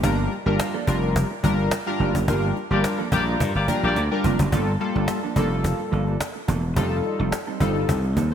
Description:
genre	early-eighties boogie funk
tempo	107 BPM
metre	4/4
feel	straight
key	G minor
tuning	A4 = 440 Hz
part	chorused polysynth	accompaniment	0.0-8.3 s	G3 to Bb4	-25 LUFS	left 2 dB	none
part	mellow electric guitar	riff	0.0-8.3 s	F3 to C5	-30 LUFS	right 6 dB	lush chorus
part	gritty slap bass	bass	0.0-8.3 s	E1 to G2	-23 LUFS	equal	overdrive
part	cajon	drums	0.0-8.3 s	none	-28 LUFS	equal	none
part	clear horn section	second line	2.7-4.0 s	Bb3 to D5	-27 LUFS	left 2 dB	none
room	light reverb, small room reverb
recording	bright 1980s-style digital production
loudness	-20 LUFS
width	side -9 dB against mid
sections	0.0-4.5 A section; 4.5-8.3 B section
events	band accent 2.3-4.5; drum fill 4.0-4.5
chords	0.0 Gm7; 4.5 Gm9; 6.8 F9

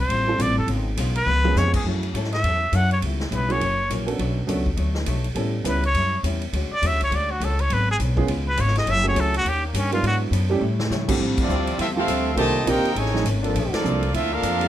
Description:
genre	jazz, big band swing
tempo	205 BPM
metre	4/4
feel	swing 61% on 8ths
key	F# minor, D minor from 11.2 s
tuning	A4 = 440 Hz
part	trumpet with straight mute	melody	0.0-10.2 s	A#3 to F#5	-23 LUFS	equal	none
part	upright bass	bass	0.0-14.7 s	F1 to C#3	-24 LUFS	equal	none
part	hollow-body jazz guitar	accompaniment	0.1-14.6 s	F2 to A4	-30 LUFS	left 4 dB	none
part	swinging big-band drum kit	drums	0.1-14.7 s	crash cymbal, hi-hat, kick drum, ride cymbal, snare drum, toms	-30 LUFS	equal	none
part	dark upright piano	accompaniment	0.3-5.8, 8.2-14.0 s	D2 to B4	-27 LUFS	right 4 dB	none
part	bright trumpet section	melody	11.4-14.7 s	Bb3 to A5	-25 LUFS	equal	none
part	warm trombone section	second line	11.4-14.7 s	Bb2 to A4	-26 LUFS	right 2 dB	none
part	clear trombone section	sustained chords	11.5-14.7 s	F3 to A4	-28 LUFS	left 1 dB	none
room	light reverb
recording	none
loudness	-20 LUFS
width	side -12 dB against mid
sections	0.0-1.9 A section; 1.9-11.2 A section; 11.2-14.7 B section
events	muted trumpet solo 0.0-11.2; drum fill 1.3, 10.6; band accent 11.3, 13.7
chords	0.0 Dm11; 0.7 C#7; 1.9 F#m7; 3.0 C#m7b5; 3.6 F#7; 4.2 Bm7; 5.4 A7; 6.5 Dmaj7#11; 7.7 G#m7b5; 8.3 C#7; 8.9 F#m7; 9.4 D#7; 10.0 G#m7b5; 10.6 A7; 11.2 Dm11; 12.4 Cm7; 13.0 F7alt; 13.5 Bbmaj7

